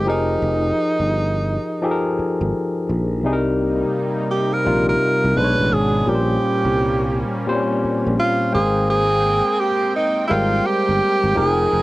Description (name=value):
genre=R&B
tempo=85 BPM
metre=4/4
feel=swing 63% on 16ths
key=unclear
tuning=A4 = 439 Hz
part: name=warm tenor saxophone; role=melody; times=0.0-11.8 s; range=Eb4 to B4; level=-19 LUFS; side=right 1 dB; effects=none
part: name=barky tine electric piano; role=accompaniment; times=0.0-11.8 s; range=Bb2 to G5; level=-21 LUFS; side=left 2 dB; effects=cassette tape
part: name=sustaining fretless electric bass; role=bass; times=0.0-11.8 s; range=F1 to C2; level=-22 LUFS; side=equal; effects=none
part: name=warm analog pad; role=sustained chords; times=3.2-11.8 s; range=C3 to G5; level=-28 LUFS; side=right 1 dB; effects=chorus, cassette tape
room=light reverb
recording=home recording on cassette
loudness=-17 LUFS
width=side -18 dB against mid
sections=0.0-11.8 A section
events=none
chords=0.1 Fm11; 3.2 Cm7; 5.4 Bm69; 6.1 Bbm69; 8.5 Abmaj13